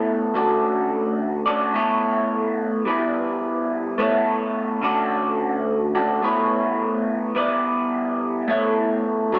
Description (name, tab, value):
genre	rock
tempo	107 BPM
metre	4/4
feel	straight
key	A mixolydian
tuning	A4 = 440 Hz
part	electric guitar through a small old amp	solo	0.0-9.4 s	D3 to D5	-19 LUFS	equal	phaser, slapback echo
room	moderate echo chamber reverb, RT60 1.7 s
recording	small speaker sound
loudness	-19 LUFS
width	side -28 dB against mid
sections	0.0-9.4 A section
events	none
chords	0.4 Dmaj7; 1.8 Aadd9; 2.9 G6; 4.0 Aadd9; 4.8 Dmaj7; 6.2 Aadd9; 7.4 G6; 8.5 Aadd9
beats	0.07 | 0.63 1.19 1.75 2.31 | 2.87 3.43 3.99 4.55 | 5.11 5.67 6.24 6.80 | 7.36 7.92 8.48 9.04